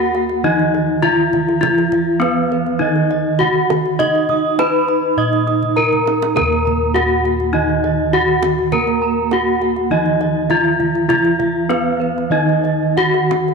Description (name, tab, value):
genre	Javanese gamelan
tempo	102 BPM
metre	4/4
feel	straight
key	Eb pelog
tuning	A4 = 441 Hz
part	gamelan-type bronze metallophone	melody	0.0-13.5 s	Cb4 to Eb5	-16 LUFS	left 4 dB	none
part	gamelan-type bronze metallophone	accompaniment	0.0-13.5 s	Eb3 to Eb4	-22 LUFS	right 10 dB	none
part	gamelan-type bronze metallophone	arpeggios	0.0-13.5 s	Cb5 to Eb6	-22 LUFS	right 7 dB	none
part	gamelan-type bossed gongs	bass	0.0-13.5 s	Eb2 to Eb5	-24 LUFS	left 2 dB	none
part	kendang	percussion	0.1-13.5 s	none	-27 LUFS	right 10 dB	none
room	wet echo chamber reverb, RT60 2.6 s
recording	1960s-style stereo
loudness	-14 LUFS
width	side -4 dB against mid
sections	0.0-13.5 A section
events	drum fill 5.6-6.4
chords	none